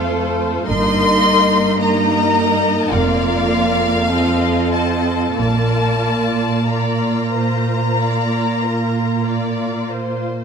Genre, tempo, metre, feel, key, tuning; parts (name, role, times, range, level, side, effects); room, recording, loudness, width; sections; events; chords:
classical, slow romantic movement for string orchestra; 45-54 BPM; 4/4; rubato; Bb major; A4 = 435 Hz
clear studio violin section; melody; 0.0-9.9 s; F5 to C6; -20 LUFS; left 4 dB
rich studio violin section; second line; 0.0-10.4 s; A4 to Eb5; -23 LUFS; left 1 dB
rich studio viola section; accompaniment; 0.0-10.3 s; A3 to F4; -20 LUFS; right 2 dB
warm studio cello section; bass; 0.0-10.3 s; F2 to Bb2; -20 LUFS; right 2 dB
warm studio double bass section; bass; 0.7-6.7 s; F1 to Bb1; -23 LUFS; right 2 dB
wet concert hall reverb, RT60 1.9 s; -15 LUFS; side -6 dB against mid
0.0-10.4 A section
0.0 F; 0.7 Eb/G; 2.9 Bb/F; 4.1 F7; 5.4 Bb